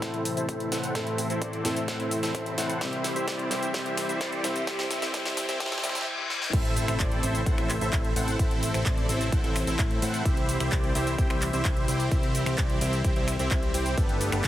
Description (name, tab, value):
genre	EDM, festival progressive house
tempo	129 BPM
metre	4/4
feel	straight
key	unclear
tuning	A4 = 440 Hz
part	warm concert grand piano	accompaniment	0.0-6.6 s	A2 to A4	-34 LUFS	equal	sidechain pumping, digital delay
part	lush unison pad	sustained chords	0.0-14.5 s	C3 to G4	-36 LUFS	left 1 dB	chorus, sidechain pumping
part	supersaw chords	riff	0.0-14.5 s	B3 to G5	-30 LUFS	equal	cassette tape, sidechain pumping, low-pass filter, digital delay
part	fat analog bass	bass	0.0-14.5 s	G1 to A2	-32 LUFS	equal	sidechain pumping, high-pass filter
part	big-room dance drum kit	drums	0.0-14.5 s	crash cymbal, finger snaps, handclaps, hi-hat, shaker, snare drum	-33 LUFS	equal	high-pass filter on hats, high-pass filter on toms, high-pass filter on snare, high-pass filter on perc, high-pass filter on cymbals, high-pass filter on room
part	electronic kick drum	drums	0.0-14.5 s	none	-27 LUFS	equal	high-pass filter on kick, high-pass filter on room
part	riser, reverse cymbal and impact	sound effects	2.4-8.4 s	none	-38 LUFS	left 2 dB	none
room	light reverb, digital ambience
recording	heavily compressed radio sound, high-pass filter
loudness	-24 LUFS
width	side -13 dB against mid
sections	0.0-6.5 A section; 6.5-14.5 B section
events	build-up 0.0-6.5; drum fill 0.0-6.1, 6.3; filter sweep on supersaw synth 0.0-6.5; filter sweep 0.0-6.5; riser 2.4-6.1; reverse cymbal 5.6-6.5; drop 6.5-14.5; impact 6.5-8.4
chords	0.0 Am; 2.8 C; 6.5 Am; 10.3 C; 14.0 Gadd9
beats	0.02 0.49 | 0.95 1.42 1.88 2.35 | 2.81 3.28 3.74 4.21 | 4.67 5.14 5.60 6.07 | 6.53 7.00 7.46 7.93 | 8.39 8.86 9.32 9.79 | 10.25 10.72 11.18 11.65 | 12.12 12.58 13.04 13.51 | 13.97 14.44